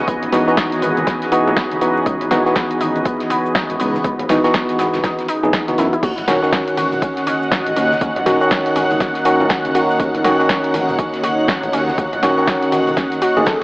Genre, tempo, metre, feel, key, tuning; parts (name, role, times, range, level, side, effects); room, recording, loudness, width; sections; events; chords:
deep house; 121 BPM; 4/4; swing 60% on 16ths; A4 = 440 Hz
deep dark ambient pad; sustained chords; 0.0-13.6 s; E3 to D#5; -25 LUFS; equal; chorus, built-in reverb, sidechain pumping
tine electric piano; stabs; 0.0-13.6 s; D#3 to G#4; -18 LUFS; equal; sidechain pumping, digital delay
airy breathy pad; texture; 0.0-13.6 s; A#3 to F#5; -25 LUFS; equal; chorus, phaser, sidechain pumping
warbly dusty pluck; arpeggios; 0.1-13.5 s; B3 to A4; -22 LUFS; equal; chorus, sidechain pumping, digital delay
smooth gliding synth bass; bass; 0.1-12.9 s; D#1 to F#2; -25 LUFS; equal; sidechain pumping
electronic kick drum; drums; 0.1-13.6 s; -24 LUFS; equal; overdrive
open jazz drum kit; drums; 0.1-13.6 s; hi-hat, snare drum; -33 LUFS; equal
punchy analog drum machine; drums; 0.1-13.6 s; crash cymbal, hi-hat, ride cymbal, shaker, snare drum; -24 LUFS; equal
congas; percussion; 0.2-13.6 s; -29 LUFS; equal
string machine, violins; texture; 6.0-13.6 s; F#5 to F#6; -24 LUFS; equal; ensemble chorus, sidechain pumping
moderate lush hall reverb, RT60 1.7 s; vinyl crackle, AM radio sound; -14 LUFS; side -24 dB against mid
0.0-13.6 A section
0.0 C#m11; 6.0 D#m7